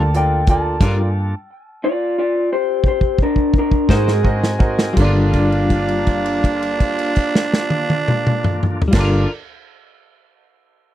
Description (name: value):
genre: slow blues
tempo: 54-61 BPM (dotted quarters)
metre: 12/8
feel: straight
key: G minor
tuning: A4 = 440 Hz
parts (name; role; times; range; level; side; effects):
- electric guitar through a small old amp; melody; 0.0-4.3 s; D4 to A5; -19 LUFS; left 2 dB; none
- bright baby grand piano; accompaniment; 0.0-9.3 s; F4 to Eb5; -26 LUFS; right 2 dB; none
- clean electric guitar; accompaniment; 0.0-9.3 s; G3 to C5; -22 LUFS; left 3 dB; harmonic tremolo
- bright tonewheel organ; sustained chords; 0.0-9.3 s; Eb3 to Bb4; -28 LUFS; equal; slow rotary speaker
- warm horn section; sustained chords; 0.0-9.2 s; F4 to Ab5; -30 LUFS; left 1 dB; none
- vintage muted fingered electric bass; bass; 0.0-9.2 s; G1 to Ab2; -19 LUFS; equal; none
- natural country drum kit; drums; 0.1-9.1 s; crash cymbal, hi-hat, kick drum, snare drum, toms; -18 LUFS; equal; none
- growling tenor saxophone; second line; 5.0-9.3 s; D4; -22 LUFS; right 4 dB; none
room: little or no reverb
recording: dry, close 1970s-style studio recording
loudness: -15 LUFS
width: side -12 dB against mid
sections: 0.0-5.0 A section; 5.0-9.4 B section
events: slowing down 0.0-5.0; drum fill 2.8-5.0; held note 5.0-8.9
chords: 0.0 Gm7; 3.9 Ab7; 5.0 Gm7